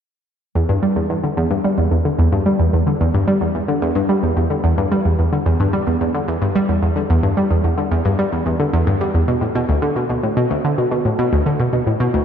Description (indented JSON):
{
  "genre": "ambient",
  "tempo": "110 BPM",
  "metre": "4/4",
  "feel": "straight",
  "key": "E minor",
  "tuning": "A4 = 440 Hz",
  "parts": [
    { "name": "analog pluck", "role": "solo", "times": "0.6-12.2 s", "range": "D2 to G3", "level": "-15 LUFS", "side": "equal", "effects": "chorus, ping-pong delay" }
  ],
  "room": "wet lush hall reverb, RT60 2.9 s",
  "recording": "dark, warm production",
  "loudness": "-15 LUFS",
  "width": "side -8 dB against mid",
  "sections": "0.6-12.2 A section",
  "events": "none",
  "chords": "none",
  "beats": "| 0.55 1.10 1.64 2.19 | 2.73 3.28 3.83 4.37 | 4.92 5.46 6.01 6.55 | 7.10 7.64 8.19 8.73 | 9.28 9.83 10.37 10.92 | 11.46 12.01"
}